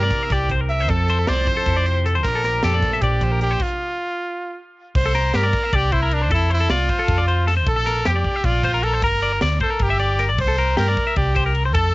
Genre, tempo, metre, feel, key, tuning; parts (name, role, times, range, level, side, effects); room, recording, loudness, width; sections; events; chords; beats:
math rock and midwest emo; 309 BPM (eighths); 7/8; straight; A4 = 441 Hz
bright trumpet; melody; 0.0-11.9 s; D4 to E5; -23 LUFS; right 1 dB; cassette tape
twelve-string electric guitar; accompaniment; 0.0-3.6 s; F2 to Bb4; -29 LUFS; right 5 dB; spring reverb, cassette tape
twelve-string electric guitar; arpeggios; 0.0-11.9 s; G4 to E5; -23 LUFS; left 3 dB; cassette tape
picked electric bass; bass; 0.0-11.9 s; G1 to G2; -21 LUFS; equal
crisp fusion drum kit; drums; 0.1-11.8 s; crash cymbal, hi-hat, kick drum, ride cymbal, snare drum; -25 LUFS; equal; cassette tape
little or no reverb; home recording on cassette, nothing above 7.7 kHz; -17 LUFS; side -20 dB against mid
0.0-5.0 A section; 5.0-11.9 B section
stop 3.6-5.0
0.0 C9; 0.9 Fmaj7; 2.3 Bb6; 3.6 N.C.; 5.0 C7sus2; 6.3 F; 7.7 Bb6; 9.0 Gm; 10.4 C7sus2
0.11 0.31 0.50 0.70 | 0.89 1.09 1.28 1.47 1.67 1.86 2.06 | 2.25 2.44 2.64 2.83 3.03 3.22 3.41 | 3.61 3.80 4.00 4.19 4.38 4.58 4.77 | 4.96 5.16 5.35 5.55 5.74 5.93 6.13 | 6.32 6.51 6.71 6.90 7.09 7.29 7.48 | 7.68 7.87 8.06 8.26 8.45 8.65 8.84 | 9.03 9.23 9.42 9.62 9.81 10.01 10.20 | 10.39 10.59 10.78 10.98 11.17 11.37 11.56 | 11.76